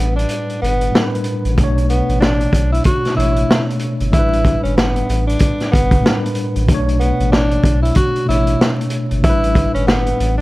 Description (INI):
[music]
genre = hip hop, boom-bap hip-hop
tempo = 94 BPM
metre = 4/4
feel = swing 59% on 16ths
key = B minor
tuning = A4 = 440 Hz
[part]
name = mellow tenor saxophone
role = melody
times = 0.0-10.4 s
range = B3 to F#4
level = -20 LUFS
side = equal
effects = digital delay
[part]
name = tine electric piano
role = accompaniment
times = 0.0-10.4 s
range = A2 to C#5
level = -20 LUFS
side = left 1 dB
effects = overdrive, fast stereo tremolo, cassette tape
[part]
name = soft dub sub bass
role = bass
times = 0.0-10.4 s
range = G1 to B1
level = -18 LUFS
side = equal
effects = none
[part]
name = crunchy breakbeat drum kit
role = drums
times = 0.2-10.4 s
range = hi-hat, kick drum, snare drum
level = -17 LUFS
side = equal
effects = none
[sound]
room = light reverb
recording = vinyl crackle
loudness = -13 LUFS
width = side -19 dB against mid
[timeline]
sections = 0.0-10.4 A section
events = break 0.0-1.6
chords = 0.0 A9sus4; 1.6 Bm9; 4.1 A9sus4; 6.7 Bm9; 9.2 A9sus4